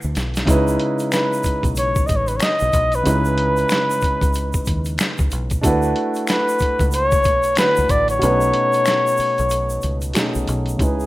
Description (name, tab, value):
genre	R&B, neo-soul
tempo	93 BPM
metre	4/4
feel	swing 62% on 16ths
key	C# minor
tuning	A4 = 440 Hz
part	warm concert grand piano	accompaniment	0.0-11.1 s	B2 to B4	-22 LUFS	right 1 dB	none
part	deep dub fingered electric bass	bass	0.0-11.1 s	A1 to D#2	-23 LUFS	equal	none
part	egg shaker and finger snaps	percussion	0.0-11.1 s	none	-30 LUFS	left 2 dB	none
part	boom bap sampler-style drum kit	drums	0.2-11.0 s	hi-hat, kick drum, snare drum	-22 LUFS	equal	none
part	mellow flugelhorn	melody	1.1-11.1 s	G#4 to D#5	-18 LUFS	left 1 dB	none
room	light reverb, small room ambience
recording	rough home demo mix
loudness	-16 LUFS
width	side -17 dB against mid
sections	0.0-10.8 A section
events	drum fill 0.0-0.5; kick muted 8.2-10.8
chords	0.5 C#m9; 5.6 D69; 8.2 B9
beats	| 0.47 1.11 1.76 2.40 | 3.05 3.70 4.34 4.99 | 5.63 6.28 6.92 7.57 | 8.21 8.86 9.50 10.15 | 10.79